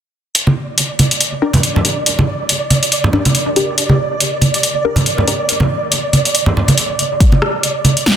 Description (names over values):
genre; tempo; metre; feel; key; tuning
deep dubstep; 140 BPM; 4/4; swing 57% on 16ths, half-time; unclear; A4 = 440 Hz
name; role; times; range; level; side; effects
deep house drum kit; drums; 0.3-8.2 s; hi-hat, rim click, snare drum; -15 LUFS; left 1 dB; overdrive
flickering grainy texture; texture; 0.7-8.2 s; D5; -20 LUFS; right 3 dB; built-in reverb
congas; percussion; 0.5-7.9 s; none; -16 LUFS; right 1 dB; dub echo
filtered dub chord stab; stabs; 1.4-5.4 s; D4 to Bb4; -21 LUFS; left 4 dB; phaser, analog chorus, dub echo
electronic kick drum; drums; 7.2-7.3 s; none; -10 LUFS; equal; overdrive
room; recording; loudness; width
moderate lush hall reverb, RT60 1.9 s, digital ambience; dense, heavily limited modern master; -12 LUFS; side -9 dB against mid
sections
0.3-8.2 A section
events
none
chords
none